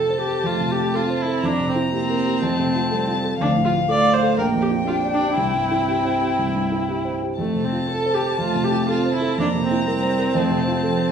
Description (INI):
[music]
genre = quick classical-period movement for piano quartet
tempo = 121 BPM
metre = 4/4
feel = straight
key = F major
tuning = A4 = 439 Hz
[part]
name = warm violin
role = melody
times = 0.0-11.1 s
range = F5 to Bb5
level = -25 LUFS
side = left 5 dB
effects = none
[part]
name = clear viola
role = accompaniment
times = 0.0-11.1 s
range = A3 to D5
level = -23 LUFS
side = right 1 dB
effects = none
[part]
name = warm grand piano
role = accompaniment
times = 0.0-11.1 s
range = Bb1 to D5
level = -24 LUFS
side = equal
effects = none
[part]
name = warm cello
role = second line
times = 0.5-11.1 s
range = F3 to D4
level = -25 LUFS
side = right 4 dB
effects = none
[sound]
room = moderate recital hall reverb, RT60 1.5 s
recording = studio reverb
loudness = -18 LUFS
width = side -7 dB against mid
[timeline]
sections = 0.0-11.1 A section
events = none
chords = 0.0 F; 1.4 C7/F; 2.4 F; 3.4 Dm; 4.4 Gm7/Bb; 5.4 C; 7.4 F; 9.4 C7/F; 10.4 F